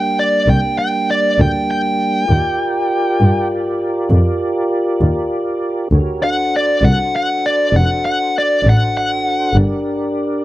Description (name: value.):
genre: slow blues.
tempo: 66 BPM (dotted quarters).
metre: 12/8.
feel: straight.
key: G minor.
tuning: A4 = 440 Hz.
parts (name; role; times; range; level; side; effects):
smooth overdriven lead guitar; melody; 0.0-9.6 s; D5 to G5; -16 LUFS; equal; none.
tonewheel organ; sustained chords; 0.0-10.4 s; G3 to D5; -20 LUFS; equal; slow rotary speaker, chorus vibrato.
warm double bass; bass; 0.5-9.6 s; E#1 to G2; -14 LUFS; equal; none.
room: small room ambience.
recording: dry, close 1970s-style studio recording.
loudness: -14 LUFS.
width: side -15 dB against mid.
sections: 0.0-10.4 A section.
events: lead electric guitar solo 0.0-10.4.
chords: 0.0 Gm; 2.3 Ebmaj7 (rootless); 5.9 D7; 9.6 Gm.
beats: 0.48 1.39 | 2.30 3.21 4.11 5.02 | 5.93 6.84 7.75 8.65 | 9.56.